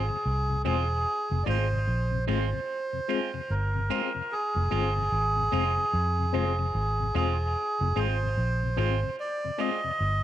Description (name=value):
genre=reggae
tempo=74 BPM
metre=4/4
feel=swing 61% on 16ths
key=F minor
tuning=A4 = 445 Hz
part: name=melodica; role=melody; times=0.0-10.2 s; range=Ab4 to Eb5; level=-29 LUFS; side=right 1 dB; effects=tape echo
part: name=clean electric guitar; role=accompaniment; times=0.0-9.9 s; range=Ab3 to F4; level=-37 LUFS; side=right 11 dB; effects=tremolo, tape echo
part: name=vintage muted fingered electric bass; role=bass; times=0.0-10.2 s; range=E1 to F2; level=-27 LUFS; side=equal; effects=none
part: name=mellow tonewheel organ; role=accompaniment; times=0.1-9.9 s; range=F2 to F4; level=-36 LUFS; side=left 8 dB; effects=slow rotary speaker
part: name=barky reed electric piano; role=stabs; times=0.6-9.8 s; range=C4 to C5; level=-36 LUFS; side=left 10 dB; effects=fast tremolo
room=wet spring reverb, RT60 2.0 s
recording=1960s-style stereo with parts hard left and right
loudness=-25 LUFS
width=side -12 dB against mid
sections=0.0-10.2 A section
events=none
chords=0.0 Fm